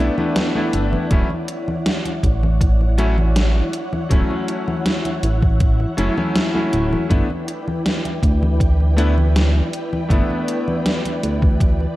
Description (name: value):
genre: vaporwave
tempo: 80 BPM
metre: 4/4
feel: straight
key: D major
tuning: A4 = 440 Hz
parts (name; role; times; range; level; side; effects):
- bright electric grand piano; accompaniment; 0.0-11.9 s; F#3 to E4; -23 LUFS; left 1 dB; lush chorus, vintage 12-bit sampler grit, analog delay
- soft string machine; sustained chords; 0.0-12.0 s; E4 to G5; -27 LUFS; equal; ensemble chorus
- chorused synth bass; bass; 0.0-11.9 s; D1 to D2; -17 LUFS; equal; none
- gated 80s digital drum machine; drums; 0.2-11.9 s; congas, hi-hat, snare drum; -23 LUFS; left 1 dB; gated reverb, gated reverb snare, overdrive
- electronic kick drum; drums; 1.1-11.8 s; none; -16 LUFS; equal; none
room: light reverb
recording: none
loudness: -16 LUFS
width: side -16 dB against mid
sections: 0.0-12.0 A section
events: none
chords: 0.0 G6; 1.1 Dmaj9; 7.1 G6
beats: 0.36 | 1.11 1.86 2.61 3.36 | 4.11 4.86 5.61 6.36 | 7.11 7.86 8.61 9.36 | 10.11 10.86 11.61